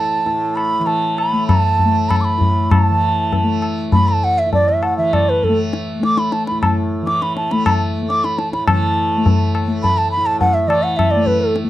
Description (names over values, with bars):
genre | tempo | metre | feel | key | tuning
indian classical, Hindustani | 102 BPM | 5/4 | uneven beats | A raga durga | A4 = 439 Hz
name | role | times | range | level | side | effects
bansuri | melody | 0.0-11.6 s | A4 to D6 | -17 LUFS | right 2 dB | none
tanpura | drone | 0.0-11.7 s | A2 to A3 | -21 LUFS | left 1 dB | none
tabla | percussion | 0.3-11.7 s | none | -18 LUFS | left 2 dB | none
room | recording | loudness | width
light reverb | dry, close 1970s-style studio recording | -14 LUFS | side -14 dB against mid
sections
0.0-8.7 A section; 8.7-11.7 B section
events
speeding up 0.0-11.7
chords
none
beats
0.25 0.88 1.49 2.11 | 2.72 3.33 3.94 4.54 5.14 | 5.74 6.33 6.92 7.51 8.10 | 8.68 9.26 9.84 10.42 10.99 | 11.56